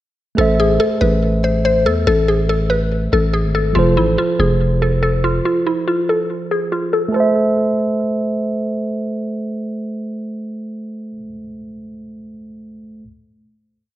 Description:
hip hop, trap; 142 BPM; 4/4; half-time; A harmonic minor; A4 = 435 Hz
mallet-like synth pluck; melody; 0.4-8.4 s; E4 to C5; -18 LUFS; left 1 dB; chorus, phaser, low-pass filter, tape echo
mellow tine electric piano; accompaniment; 0.4-13.0 s; F3 to E5; -20 LUFS; right 2 dB; low-pass filter
growling 808-style bass; bass; 0.4-5.4 s; F1 to E2; -17 LUFS; equal
moderate recital hall reverb, RT60 1.5 s; low-pass filter; -15 LUFS; side -14 dB against mid
0.4-7.1 breakdown; 7.1-10.5 final chord
0.4 Am; 3.8 F; 7.1 Am
| 0.38 0.80 1.23 1.65 | 2.07 2.49 2.92 3.34 | 3.76 4.18 4.61 5.03 | 5.45 5.87 6.30 6.72 | 7.14 7.56 7.99 8.41 | 8.83 9.25 9.68 10.10

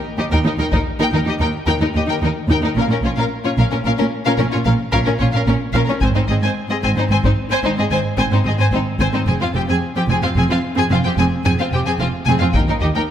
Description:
cinematic, epic orchestral film score; 74 BPM (dotted quarters); 12/8; straight; A4 = 439 Hz
rich symphonic violin section; melody; 0.2-13.0 s; Bb4 to Ab5; -24 LUFS; left 3 dB
rich symphonic violin section; second line; 0.2-13.0 s; Db4 to C5; -24 LUFS; left 3 dB
rich studio viola section; accompaniment; 0.2-13.0 s; C4 to Eb4; -24 LUFS; equal
warm symphonic cello section; bass; 0.2-13.0 s; Eb2 to Bb2; -21 LUFS; right 1 dB
warm symphonic double bass section; bass; 0.3-12.9 s; F1 to Eb2; -21 LUFS; right 2 dB
solo taiko drums; drums; 0.7-1.0, 6.0-7.5, 12.5-13.1 s; -22 LUFS; left 1 dB
moderate scoring stage reverb, RT60 1.7 s; -15 LUFS; side -10 dB against mid
0.0-13.1 A section
build-up 0.0-13.1
0.0 Eb5; 2.8 Bbm; 6.0 Ab; 9.3 Fm; 12.5 N.C.
0.32 1.14 1.96 | 2.77 3.59 4.40 5.21 | 6.02 6.84 7.65 8.47 | 9.29 10.10 10.91 11.73 | 12.55

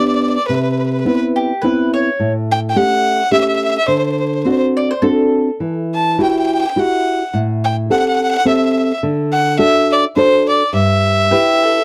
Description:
italian folk, Italian serenade; 105 BPM; 3/4; swing 55% on 8ths, rubato; A4 = 440 Hz
clear fiddle; melody; 0.0-11.8 s; B4 to A5; -18 LUFS; equal
nylon-string guitar; accompaniment; 0.0-11.8 s; G2 to B4; -18 LUFS; equal
mandolin; second line; 1.4-5.7, 11.3-11.8 s; G4 to D5; -21 LUFS; equal
little or no reverb; dry, close 1970s-style studio recording; -15 LUFS; mono
0.0-11.8 A section
0.5 Cmaj7; 2.2 A7; 3.9 D7; 5.6 Emadd9; 7.3 Am7; 9.0 D; 10.7 G6
| 0.48 1.05 1.62 | 2.19 2.75 3.32 | 3.89 4.46 5.03 | 5.61 6.19 6.76 | 7.33 7.90 8.46 | 9.03 9.60 10.17 | 10.74 11.32

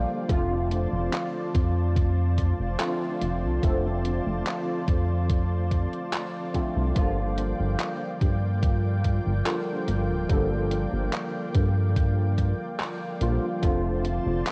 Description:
vaporwave; 72 BPM; 4/4; straight; G minor; A4 = 439 Hz
barky tine electric piano; accompaniment; 0.0-14.5 s; D3 to A4; -32 LUFS; equal; ensemble chorus, cassette tape, analog delay
lush unison pad; sustained chords; 0.0-14.5 s; Bb3 to A5; -37 LUFS; equal; chorus, vintage 12-bit sampler grit, cassette tape
chorused synth bass; bass; 0.0-14.4 s; D1 to G2; -28 LUFS; equal
detuned 8-bit digital drum machine; drums; 0.3-14.5 s; handclaps, hi-hat; -36 LUFS; equal; studio reverb
electronic kick drum; drums; 0.3-13.8 s; -28 LUFS; equal; overdrive, studio reverb
little or no reverb; home recording on cassette; -26 LUFS; mono
0.0-14.5 A section
0.3 F6; 7.0 Gm7; 13.6 F6
| 0.29 1.13 1.96 2.79 | 3.63 4.46 5.29 6.13 | 6.96 7.79 8.63 9.46 | 10.29 11.13 11.96 12.79 | 13.63 14.46

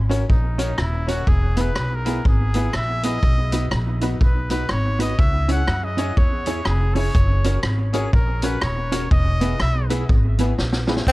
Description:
ska; 122 BPM; 4/4; swing 61% on 8ths; A4 = 442 Hz
upright bass; bass; 0.0-11.1 s; D#1 to F#2; -21 LUFS; equal
mellow electric guitar; accompaniment; 0.1-11.0 s; B3 to C#5; -29 LUFS; right 4 dB; dub echo
clear upright piano; stabs; 0.1-11.0 s; B3 to C#5; -28 LUFS; left 4 dB
vintage drum kit; drums; 0.1-11.1 s; hi-hat, kick drum, rim click, snare drum; -21 LUFS; equal
warm trumpet; melody; 0.3-9.9 s; D#4 to F#5; -28 LUFS; equal; dub echo
growling tenor saxophone; melody; 11.1 s; C#4; -16 LUFS; equal
little or no reverb; dark, warm production; -18 LUFS; side -20 dB against mid
0.0-11.1 A section
trumpet solo 0.0-11.1; drum fill 10.6-11.1
0.0 F#; 1.3 E; 3.2 B; 5.2 C#m; 7.2 F#; 9.1 E
0.29 0.78 | 1.27 1.76 2.25 2.74 | 3.23 3.72 4.21 4.70 | 5.19 5.68 6.17 6.66 | 7.15 7.64 8.13 8.62 | 9.11 9.60 10.09 10.58 | 11.07

